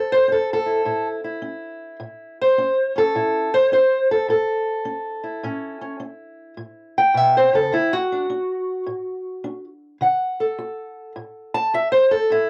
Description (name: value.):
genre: acoustic country blues, solo or duo.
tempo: 105 BPM.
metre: 4/4.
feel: swing 66% on 8ths.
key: unclear.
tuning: A4 = 440 Hz.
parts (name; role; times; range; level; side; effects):
fingerpicked steel-string acoustic guitar; solo; 0.0-12.5 s; A2 to A5; -21 LUFS; equal; none.
room: light reverb.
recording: home recording on cassette.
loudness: -20 LUFS.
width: mono.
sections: 0.0-12.5 A section.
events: steel-string acoustic guitar solo 0.0-12.5.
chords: 0.0 A; 7.7 D.